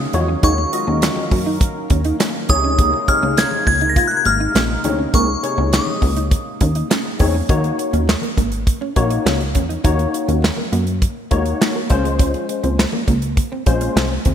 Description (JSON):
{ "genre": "early-eighties boogie funk", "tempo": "102 BPM", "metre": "4/4", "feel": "straight", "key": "Eb dorian", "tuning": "A4 = 440 Hz", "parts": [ { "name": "glassy synth bell", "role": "melody", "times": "0.0-7.2 s", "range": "Db6 to Bb6", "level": "-20 LUFS", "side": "left 1 dB", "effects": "chorus, phaser" }, { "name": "warm analog pad", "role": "sustained chords", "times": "0.0-7.5 s", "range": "C3 to F5", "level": "-29 LUFS", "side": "equal", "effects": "wide subtle chorus" }, { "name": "plucky analog bass", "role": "bass", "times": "0.0-14.3 s", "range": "Ab1 to Gb2", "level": "-20 LUFS", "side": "equal", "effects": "none" }, { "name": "barky tine electric piano", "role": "accompaniment", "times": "0.1-14.1 s", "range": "C3 to Eb5", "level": "-23 LUFS", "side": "left 4 dB", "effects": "overdrive, ensemble chorus" }, { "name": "electric guitar at the edge of break-up", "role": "riff", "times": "0.1-14.3 s", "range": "Ab3 to F4", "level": "-26 LUFS", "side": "right 5 dB", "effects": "ensemble chorus" }, { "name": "modern studio drum kit", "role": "drums", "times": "0.1-14.3 s", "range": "handclaps, hi-hat, kick drum, snare drum", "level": "-18 LUFS", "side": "equal", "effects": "none" }, { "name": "congas", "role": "percussion", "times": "0.1-14.3 s", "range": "none", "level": "-29 LUFS", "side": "left 8 dB", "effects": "none" } ], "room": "moderate lush hall reverb, RT60 2.0 s, studio ambience", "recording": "bright 1980s-style digital production", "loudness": "-15 LUFS", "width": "side -9 dB against mid", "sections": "0.0-7.5 A section; 7.5-14.3 B section", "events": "none", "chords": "0.0 Ebm11; 2.5 Bbm11; 7.5 Ebm7; 11.9 Dbmaj7" }